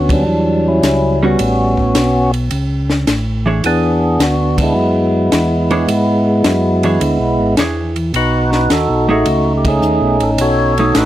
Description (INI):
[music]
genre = soul jazz organ trio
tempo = 107 BPM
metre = 4/4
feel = swing 68% on 8ths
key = E mixolydian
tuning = A4 = 440 Hz
[part]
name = percussive tonewheel organ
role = melody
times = 0.0-11.1 s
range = F#3 to C#5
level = -14 LUFS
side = equal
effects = overdrive, slow rotary speaker
[part]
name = tonewheel organ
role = bass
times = 0.0-11.1 s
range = G#1 to G#2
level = -16 LUFS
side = equal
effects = slow rotary speaker
[part]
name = compact cocktail drum kit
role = drums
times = 0.1-11.1 s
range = hi-hat, kick drum, ride cymbal, snare drum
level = -21 LUFS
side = left 1 dB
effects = none
[part]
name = vintage hollow-body jazz guitar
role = accompaniment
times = 1.2-11.1 s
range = E3 to C#5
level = -16 LUFS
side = right 2 dB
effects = none
[sound]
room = little or no reverb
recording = dry, close 1970s-style studio recording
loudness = -12 LUFS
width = side -13 dB against mid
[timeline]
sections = 0.0-11.1 A section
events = band accent 0.0, 4.5, 9.5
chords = 0.0 A13; 3.6 E13; 8.1 B13